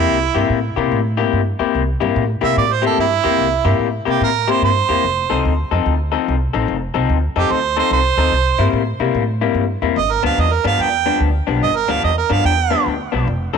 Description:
electric blues shuffle; 146 BPM; 4/4; swing 65% on 8ths; C mixolydian; A4 = 440 Hz
bright harmonica; melody; 0.0-12.8 s; E4 to G5; -19 LUFS; right 11 dB; overdrive, tape echo
electric guitar through a small old amp; riff; 0.0-13.6 s; G2 to A4; -19 LUFS; left 12 dB; wide subtle chorus
upright bass; bass; 0.0-13.6 s; F1 to C3; -20 LUFS; right 1 dB
light reverb, small room ambience; 1960s-style stereo with parts hard left and right; -15 LUFS; side -6 dB against mid
0.0-13.6 A section
0.0 C7; 5.0 F7; 8.3 C7; 10.0 G7
| 0.09 0.50 0.91 1.32 | 1.73 2.15 2.56 2.97 | 3.38 3.79 4.20 4.62 | 5.03 5.44 5.85 6.26 | 6.67 7.09 7.50 7.91 | 8.32 8.73 9.15 9.56 | 9.97 10.38 10.79 11.21 | 11.62 12.03 12.44 12.85 | 13.26

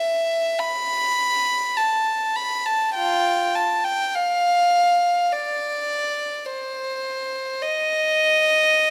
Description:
classical, free, expressive piece for unaccompanied violin; 51 BPM; 4/4; rubato; A4 = 442 Hz
warm violin; solo; 0.0-8.9 s; F4 to B5; -21 LUFS; equal
moderate recital hall reverb, RT60 1.5 s; -22 LUFS; mono
0.0-8.9 A section
0.61 1.79 | 2.97 4.15 5.31 6.45 | 7.63 8.77

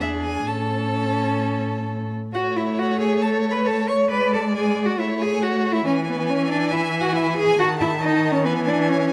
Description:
quick classical-period movement for string quartet; 137 BPM; 4/4; rubato; A major; A4 = 440 Hz
rich violin; melody; 0.0-9.1 s; B4 to C#6; -33 LUFS; equal
rich violin; second line; 0.0-9.1 s; G#4 to A5; -32 LUFS; equal
warm viola; accompaniment; 0.0-9.1 s; D#3 to D4; -27 LUFS; equal
rich cello; bass; 0.0-9.1 s; E2 to C#5; -24 LUFS; equal
moderate recital hall reverb, RT60 1.4 s; -22 LUFS; mono
0.0-2.3 A section; 2.3-9.1 B section
0.0 E7; 0.5 A; 4.1 G#m7b5; 5.0 A; 5.9 E; 7.6 D#m7b5; 8.5 E
0.00 | 0.47 0.95 1.41 1.88 | 2.34 2.79 3.23 3.67 | 4.11 4.55 4.99 5.43 | 5.86 6.29 6.72 7.16 | 7.59 8.02 8.46 8.89

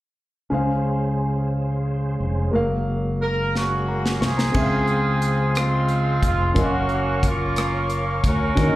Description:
slow gospel; 60 BPM (dotted quarters); 6/8; straight; Db major; A4 = 440 Hz
clear concert grand piano; accompaniment; 0.5-8.8 s; Db3 to Db6; -26 LUFS; equal; plate reverb, slapback echo
tonewheel organ; sustained chords; 0.5-8.8 s; Gb3 to Db6; -31 LUFS; right 2 dB; slow rotary speaker, chorus vibrato, plate reverb
fingered electric bass; bass; 0.5-8.8 s; F1 to Eb2; -23 LUFS; equal
warm horn section; melody; 3.2-8.8 s; Ab3 to Bb4; -24 LUFS; right 1 dB; plate reverb, slapback echo
modern studio drum kit; drums; 3.6-8.7 s; crash cymbal, hi-hat, kick drum, rim click, snare drum; -23 LUFS; equal
light reverb; live gig heard through the venue's PA, club reverb; -19 LUFS; side -16 dB against mid
0.5-4.5 A section; 4.5-8.8 B section
drum fill 3.5-4.5
0.5 Dbmaj7; 2.5 Gbmaj7; 4.5 Dbmaj7; 6.6 Gbmaj7
| 0.52 1.52 | 2.53 3.54 | 4.54 5.55 | 6.56 7.57 | 8.57

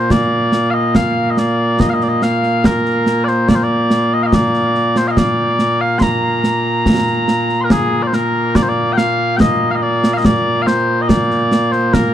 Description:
scottish traditional, Scottish pipe music; 71 BPM; 3/4; straight; Bb major; A4 = 440 Hz
mellow small bagpipes; melody; 0.0-12.1 s; Bb2 to C6; -14 LUFS; equal
concert snare drum and concert bass drum; drums; 0.1-12.1 s; -16 LUFS; equal
studio reverb; dry, close 1970s-style studio recording; -12 LUFS; side -10 dB against mid
0.0-7.7 A section; 7.7-12.1 B section
| 0.10 0.95 1.79 | 2.64 3.48 4.33 | 5.17 6.02 6.87 | 7.71 8.56 9.40 | 10.25 11.09 11.94

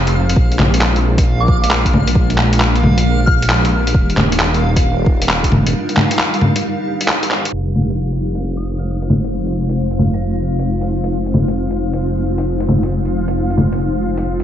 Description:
future garage; 134 BPM; 4/4; swing 65% on 16ths; F dorian; A4 = 444 Hz
granular cloud pad; sustained chords; 0.0-14.4 s; G3 to C5; -21 LUFS; left 1 dB; built-in reverb, sidechain pumping
swelling detuned saw bass; bass; 0.0-14.4 s; Eb1 to Bb1; -18 LUFS; equal; sidechain pumping
backwards swelling texture; texture; 0.0-14.4 s; F5; -28 LUFS; equal; built-in reverb
lo-fi sampler-style drum kit; drums; 0.1-14.4 s; bongos, handclaps, hi-hat; -17 LUFS; equal
electronic kick drum; drums; 0.4-5.5 s; -15 LUFS; equal; overdrive
soft synth bell; melody; 1.4-3.9, 8.6-10.6 s; D6 to Bb6; -23 LUFS; left 1 dB; chorus, phaser, ping-pong delay
light reverb, digital ambience; vinyl crackle, low-pass filter, nothing above 7.7 kHz; -13 LUFS; side -10 dB against mid
0.0-7.5 A section; 7.5-14.4 B section
break 5.7-7.5; filter sweep 7.5-14.4
0.4 Bb7; 3.9 Ebmaj9; 7.5 Fm7
| 0.37 0.81 1.26 1.71 | 2.16 2.60 3.05 3.50 | 3.95 4.40 4.84 5.29 | 5.74 6.19 6.63 7.08 | 7.53 7.98 8.43 8.87 | 9.32 9.77 10.22 10.66 | 11.11 11.56 12.01 12.46 | 12.90 13.35 13.80 14.25

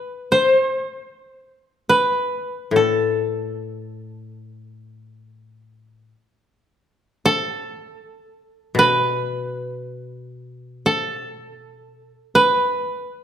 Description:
japanese traditional, Japanese chamber music; free time; A hirajoshi; A4 = 442 Hz
koto; melody; 0.0-13.2 s; A4 to C5; -18 LUFS; equal
koto; accompaniment; 2.7-12.1 s; A2 to B2; -24 LUFS; left 5 dB
moderate recital hall reverb, RT60 1.4 s; -18 LUFS; side -9 dB against mid
0.0-13.2 A section
free time

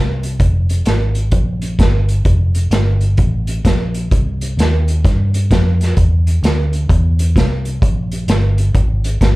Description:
electric blues shuffle; 129 BPM; 4/4; swing 64% on 8ths; A4 = 440 Hz
vintage muted fingered electric bass; bass; 0.0-9.4 s; F1 to G2; -14 LUFS; equal
vintage drum kit; drums; 0.2-9.4 s; hi-hat, kick drum, snare drum; -16 LUFS; equal
little or no reverb; live gig heard through the venue's PA, club reverb; -13 LUFS; side -20 dB against mid
0.0-9.4 A section
| 0.41 0.87 1.33 1.80 | 2.26 2.72 3.19 3.65 | 4.12 4.58 5.04 5.51 | 5.97 6.43 6.90 7.36 | 7.82 8.29 8.75 9.21

